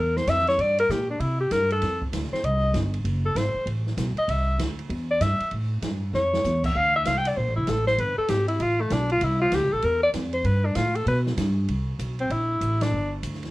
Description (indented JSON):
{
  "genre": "jazz, small-group swing and bop",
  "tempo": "195 BPM",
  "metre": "4/4",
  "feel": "swing 63% on 8ths",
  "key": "unclear",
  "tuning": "A4 = 440 Hz",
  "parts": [
    { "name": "clear alto saxophone", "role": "melody", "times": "0.0-13.1 s", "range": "A3 to G5", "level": "-23 LUFS", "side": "left 1 dB", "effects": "none" },
    { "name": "upright bass", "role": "bass", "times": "0.0-13.5 s", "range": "F1 to C3", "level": "-26 LUFS", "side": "equal", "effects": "none" },
    { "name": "open jazz drum kit", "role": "drums", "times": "0.2-13.5 s", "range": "crash cymbal, hi-hat, kick drum, ride cymbal, snare drum", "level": "-33 LUFS", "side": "right 1 dB", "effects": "none" }
  ],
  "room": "light reverb",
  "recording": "worn, warbling old tape, cassette tape, warbly pitch drift",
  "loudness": "-22 LUFS",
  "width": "side -18 dB against mid",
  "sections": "0.0-11.7 A section; 11.7-13.5 B section",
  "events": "alto saxophone solo 0.0-11.7; drum fill 6.1-6.4; band accent 12.8",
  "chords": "0.0 C7; 0.6 Gm; 1.2 C5; 1.8 Fsus2; 3.1 F#dim; 4.3 Cadd9; 5.5 A7; 6.8 Dm7; 8.0 Gadd9; 9.2 C; 10.5 Gadd9; 11.7 C9",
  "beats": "0.28 | 0.59 0.90 1.21 1.52 | 1.82 2.13 2.44 2.75 | 3.06 3.37 3.67 3.98 | 4.29 4.60 4.91 5.21 | 5.52 5.83 6.14 6.45 | 6.75 7.06 7.37 7.68 | 7.99 8.29 8.60 8.91 | 9.22 9.53 9.84 10.14 | 10.45 10.76 11.07 11.38 | 11.69 11.99 12.30 12.61 | 12.92 13.23"
}